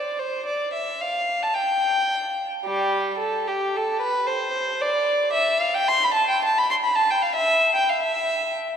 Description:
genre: classical, baroque-style suite movement for unaccompanied violin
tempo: 111 BPM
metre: 3/4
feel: rubato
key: unclear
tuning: A4 = 438 Hz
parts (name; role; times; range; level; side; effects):
- warm violin; solo; 0.0-8.5 s; G3 to C6; -20 LUFS; equal; none
room: wet cathedral reverb, RT60 5.0 s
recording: recorded in a church or concert hall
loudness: -20 LUFS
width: side -8 dB against mid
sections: 0.0-8.8 A section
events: none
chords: none

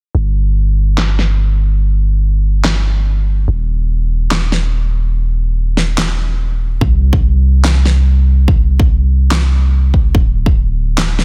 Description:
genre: future bass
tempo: 144 BPM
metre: 4/4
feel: half-time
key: unclear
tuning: A4 = 443 Hz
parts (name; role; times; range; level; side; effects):
- long sustained 808-style bass; bass; 0.1-11.2 s; D1 to C2; -15 LUFS; equal; sidechain pumping
- electronic snare drum and handclaps; drums; 1.0-11.2 s; none; -20 LUFS; equal; low-pass filter on snare, small room ambience
- electronic kick drum; drums; 6.8-10.5 s; none; -15 LUFS; equal; small room ambience
room: digital ambience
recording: dense, heavily limited modern master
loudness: -14 LUFS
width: mono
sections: 0.1-11.2 A section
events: none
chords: none

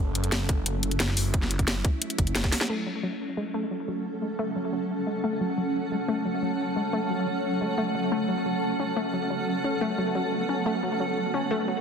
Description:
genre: dark technical drum and bass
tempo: 177 BPM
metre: 4/4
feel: straight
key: F# minor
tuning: A4 = 440 Hz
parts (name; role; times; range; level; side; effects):
- swarming drone; sustained chords; 0.0-11.8 s; F#3 to C#5; -31 LUFS; right 2 dB; built-in reverb, sidechain pumping
- phased detuned saw bass; bass; 0.0-2.5 s; F#1; -28 LUFS; equal; phaser, overdrive, sidechain pumping
- drum and bass drum kit; drums; 0.2-2.8 s; crash cymbal, hi-hat, snare drum; -28 LUFS; left 1 dB; overdrive, low-pass filter on hats, low-pass filter on snare, low-pass filter on cymbals
- electronic kick drum; drums; 0.5-2.5 s; none; -26 LUFS; equal; overdrive
- wide unison pluck; arpeggios; 2.7-11.8 s; F#3 to C#4; -30 LUFS; left 3 dB; sidechain pumping, ping-pong delay
- granular cloud pad; texture; 3.7-11.8 s; C#4 to A5; -30 LUFS; right 1 dB; built-in reverb, sidechain pumping
room: wet lush hall reverb, RT60 2.1 s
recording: dense, heavily limited modern master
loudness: -25 LUFS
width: side -6 dB against mid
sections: 0.0-2.7 A section; 2.7-11.8 B section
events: drop 0.0-2.7; drum fill 2.4; filter sweep on synth arpeggio sound 2.7-11.8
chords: 0.0 F#m

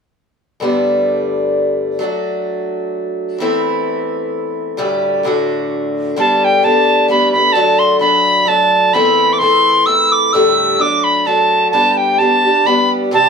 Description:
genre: celtic folk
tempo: 130 BPM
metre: 3/4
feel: swing 54% on 8ths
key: G major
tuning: A4 = 440 Hz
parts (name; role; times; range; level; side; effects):
- picked acoustic archtop guitar; accompaniment; 0.6-13.3 s; D2 to G4; -15 LUFS; left 1 dB; none
- bright wooden whistle; melody; 6.2-13.3 s; G5 to E6; -12 LUFS; right 1 dB; none
room: wet studio ambience, RT60 0.5 s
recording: band playing live in one room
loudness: -12 LUFS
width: side -6 dB against mid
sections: 0.6-6.2 A section; 6.2-13.3 B section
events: none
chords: 0.6 Gadd9; 2.0 D/F#; 3.4 Am/E; 4.8 Dsus4; 5.2 D; 6.2 Gadd9; 7.5 D; 8.9 Am/E; 10.3 Dsus4; 10.8 D; 11.7 G

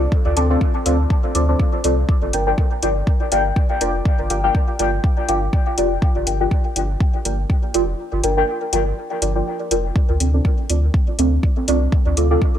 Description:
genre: dub techno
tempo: 122 BPM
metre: 4/4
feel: swing 56% on 16ths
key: unclear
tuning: A4 = 440 Hz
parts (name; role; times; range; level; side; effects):
- warm sub bass; bass; 0.0-12.4 s; F1 to D2; -20 LUFS; equal; sidechain pumping
- electronic kick drum; drums; 0.1-12.5 s; none; -18 LUFS; equal; none
- deep mellow chord stab; stabs; 0.4-12.4 s; C4 to G5; -20 LUFS; equal; chorus, phaser, sidechain pumping, dub echo
- electronic hi-hat; drums; 0.4-12.3 s; none; -24 LUFS; left 2 dB; overdrive
room: light reverb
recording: none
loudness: -16 LUFS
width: side -10 dB against mid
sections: 0.0-12.6 A section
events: kick drops out 8.0-10.0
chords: 0.0 Dm7; 2.1 Gm7; 10.0 Dm7

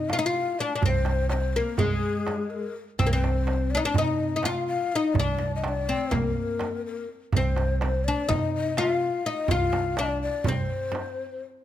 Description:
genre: Turkish makam ensemble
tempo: 249 BPM (eighths)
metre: 9/8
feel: straight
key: C makam ussak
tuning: A4 = 440 Hz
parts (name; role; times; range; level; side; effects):
- oud; melody; 0.0-11.4 s; Ab3 to F4; -28 LUFS; left 3 dB; none
- breathy mellow ney; second line; 0.0-11.4 s; Ab4 to F#5; -31 LUFS; left 6 dB; none
- upright bass; bass; 0.0-10.6 s; C2 to C3; -29 LUFS; right 1 dB; none
- darbuka; percussion; 0.1-11.1 s; none; -33 LUFS; right 4 dB; none
- frame drum; percussion; 0.1-11.0 s; none; -30 LUFS; right 4 dB; none
room: little or no reverb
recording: close, detailed microphones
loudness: -24 LUFS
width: side -12 dB against mid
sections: 0.0-11.6 A section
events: none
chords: none

